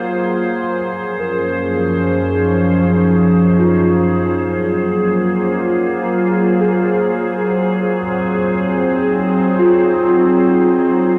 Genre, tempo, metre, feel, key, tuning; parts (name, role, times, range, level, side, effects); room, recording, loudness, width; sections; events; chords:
ambient; 50 BPM; 3/4; straight; Gb lydian; A4 = 443 Hz
evolving wavetable pad; sustained chords; 0.0-11.2 s; Gb2 to C5; -16 LUFS; equal; chorus, built-in reverb
mellow tine electric piano; arpeggios; 0.0-11.2 s; F4 to C5; -22 LUFS; equal; ensemble chorus, analog delay
wet small room reverb, RT60 0.6 s; home recording on cassette; -15 LUFS; mono
0.0-11.2 A section
fade-in on tine electric piano 0.0-11.2
0.0 Gbmaj9#11